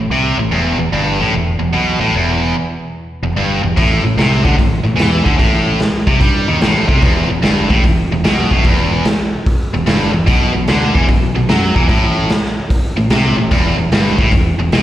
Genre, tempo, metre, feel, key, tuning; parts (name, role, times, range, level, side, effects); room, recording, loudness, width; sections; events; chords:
blues rock power trio and southern rock; 148 BPM; 4/4; swing 67% on 8ths; A4 = 441 Hz
tight distorted guitar; riff; 0.0-14.8 s; E2 to G3; -15 LUFS; equal; distortion, slapback echo
growling fingered electric bass; bass; 0.0-14.8 s; E1 to G2; -18 LUFS; equal; overdrive
raw garage drum kit; drums; 3.8-14.8 s; hi-hat, kick drum, snare drum; -15 LUFS; equal
light reverb, small room reverb; live gig heard through the venue's PA, recital hall reverb; -12 LUFS; side -13 dB against mid
0.0-14.8 A section
0.0 Am; 0.5 E5; 3.8 A5; 7.0 E5; 10.3 B5; 11.9 Am; 13.5 E5